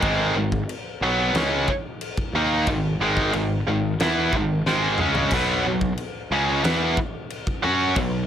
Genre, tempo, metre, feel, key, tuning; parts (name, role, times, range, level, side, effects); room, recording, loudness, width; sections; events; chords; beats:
heavy metal; 91 BPM; 4/4; straight; A4 = 440 Hz
tight distorted guitar; riff; 0.0-8.2 s; Ab2 to F#4; -21 LUFS; equal; distortion
fuzz picked electric bass; bass; 0.0-8.3 s; Ab1 to F#2; -28 LUFS; equal; overdrive
big rock drum kit; drums; 0.0-8.1 s; crash cymbal, kick drum, snare drum, splash cymbal, toms; -28 LUFS; equal
light reverb; -20 LUFS; side -9 dB against mid
0.0-8.3 A section
drum fill 4.7-5.3
0.0 Ab5; 5.3 B5
| 0.03 0.69 1.35 2.01 | 2.67 3.33 3.99 4.65 | 5.31 5.97 6.64 7.30 | 7.96